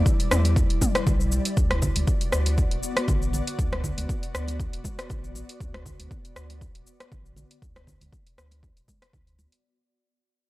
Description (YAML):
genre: afro house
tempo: 119 BPM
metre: 4/4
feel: swing 54% on 16ths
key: unclear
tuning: A4 = 440 Hz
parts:
  - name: ethereal airy pad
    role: sustained chords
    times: 0.0-9.6 s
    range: G3 to D5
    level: -34 LUFS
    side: left 1 dB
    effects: ensemble chorus, built-in reverb, sidechain pumping
  - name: warm sub bass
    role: bass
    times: 0.0-9.5 s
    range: D1 to E2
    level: -26 LUFS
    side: equal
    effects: sidechain pumping
  - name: deep house drum kit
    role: drums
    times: 0.1-9.6 s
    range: cabasa, hi-hat, rim click, toms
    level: -28 LUFS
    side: left 1 dB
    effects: overdrive
  - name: electronic kick drum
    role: drums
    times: 0.1-9.2 s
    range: none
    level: -25 LUFS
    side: equal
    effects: overdrive
  - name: congas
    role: percussion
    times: 0.1-9.5 s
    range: none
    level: -35 LUFS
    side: right 2 dB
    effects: none
room: digital ambience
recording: dry, gritty hardware recording, cassette tape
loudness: -22 LUFS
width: side -18 dB against mid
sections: 0.0-9.6 A section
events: fade-out 0.0-9.6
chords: 0.0 Em7; 1.6 D6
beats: 0.06 0.56 1.07 | 1.57 2.08 2.58 3.08 | 3.59 4.09 4.60 5.10 | 5.61 6.11 6.61 7.12 | 7.62 8.13 8.63 9.13